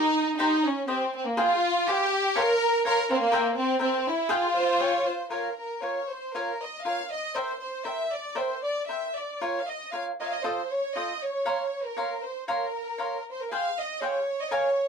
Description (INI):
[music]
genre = mexican folk, mariachi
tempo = 114-125 BPM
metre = 2/4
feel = rubato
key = F minor, Bb minor from 5.3 s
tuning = A4 = 439 Hz
[part]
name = warm studio violin section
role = melody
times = 0.0-14.9 s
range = Bb3 to F5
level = -26 LUFS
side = equal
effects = none
[part]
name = cavaquinho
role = accompaniment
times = 0.0-14.7 s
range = F4 to C6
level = -29 LUFS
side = equal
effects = none
[sound]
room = moderate small room ambience, RT60 0.5 s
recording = none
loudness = -25 LUFS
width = side -6 dB against mid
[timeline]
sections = 0.0-5.3 A section; 5.3-13.5 B section; 13.5-14.9 A section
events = none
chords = 0.4 Cm; 1.4 Fmadd9; 2.4 Bbmadd9; 3.3 C7; 4.3 Fmadd9; 5.3 Bbm; 7.3 C7; 9.4 Bbm/F; 10.5 F7; 11.5 Bbmadd9; 13.5 Fmadd9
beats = | 0.38 0.88 | 1.38 1.87 | 2.36 2.84 | 3.33 3.81 | 4.30 4.80 | 5.31 5.83 | 6.33 6.84 | 7.34 7.85 | 8.37 8.89 | 9.42 9.94 | 10.45 10.96 | 11.47 11.98 | 12.49 13.01 | 13.53 14.03 | 14.52